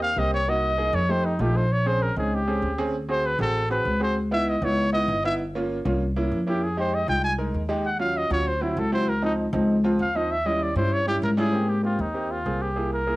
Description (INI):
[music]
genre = Afro-Cuban jazz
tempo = 196 BPM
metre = 4/4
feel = straight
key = Ab major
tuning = A4 = 444 Hz
[part]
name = breathy trumpet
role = melody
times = 0.0-13.2 s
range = Eb4 to Ab5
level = -25 LUFS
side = equal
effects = cassette tape
[part]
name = clear concert grand piano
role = accompaniment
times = 0.0-13.2 s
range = F3 to Bb4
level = -27 LUFS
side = right 1 dB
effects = none
[part]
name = upright bass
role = bass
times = 0.0-13.2 s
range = G1 to Ab2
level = -26 LUFS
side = left 1 dB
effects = none
[sound]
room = moderate studio reverb, RT60 0.7 s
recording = home recording on cassette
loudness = -22 LUFS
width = side -19 dB against mid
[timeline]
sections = 0.0-1.7 A section; 1.7-11.5 A section; 11.5-13.2 B section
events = trumpet solo 0.0-11.5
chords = 0.5 Cm7b5; 1.1 F7; 1.7 Bbm9; 2.9 D7#11; 4.2 Dbm9; 5.4 Gm7b5; 6.0 C7b9; 6.6 Fm7; 7.8 Ebm7; 8.5 D9; 9.1 Dbmaj9; 10.3 Eb7b9; 11.5 Abmaj9